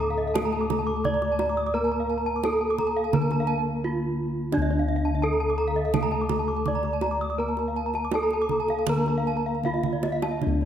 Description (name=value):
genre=Balinese gamelan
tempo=77-86 BPM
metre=4/4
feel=straight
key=D pelog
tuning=A4 = 439 Hz
part: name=gamelan-type bronze metallophone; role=melody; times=0.0-10.7 s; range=D4 to D5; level=-27 LUFS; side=right 1 dB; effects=none
part: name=gamelan-type bronze metallophone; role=accompaniment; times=0.0-10.7 s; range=D3 to Bb3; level=-33 LUFS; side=left 3 dB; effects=none
part: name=gamelan-type bronze metallophone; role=arpeggios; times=0.0-10.7 s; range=D5 to Eb6+35c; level=-32 LUFS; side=left 4 dB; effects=none
part: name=gamelan-type bossed gongs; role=bass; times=0.0-10.7 s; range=D2 to Bb4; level=-29 LUFS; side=left 2 dB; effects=none
part: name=gamelan-type bronze metallophone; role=arpeggios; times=0.1-10.6 s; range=D5 to D6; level=-34 LUFS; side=right 8 dB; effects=none
part: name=kendang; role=percussion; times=0.4-10.7 s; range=none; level=-32 LUFS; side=right 6 dB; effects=none
room=moderate concert hall reverb, RT60 2.0 s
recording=none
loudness=-23 LUFS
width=side -9 dB against mid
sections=0.0-10.4 A section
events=break 3.5-4.5; drum fill 9.6-10.4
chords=none